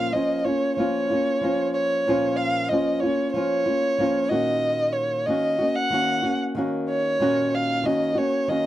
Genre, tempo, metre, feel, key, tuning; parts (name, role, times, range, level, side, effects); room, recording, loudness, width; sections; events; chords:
pop; 93 BPM; 4/4; straight; Bb minor; A4 = 440 Hz
dark violin; melody; 0.0-8.7 s; Db5 to Gb5; -23 LUFS; right 1 dB
flamenco guitar; accompaniment; 0.0-8.7 s; Bb2 to Gb4; -24 LUFS; left 1 dB
light reverb; dry, close 1970s-style studio recording; -21 LUFS; side -13 dB against mid
0.0-8.7 A section
0.0 Bbm; 4.3 Ebm7/Bb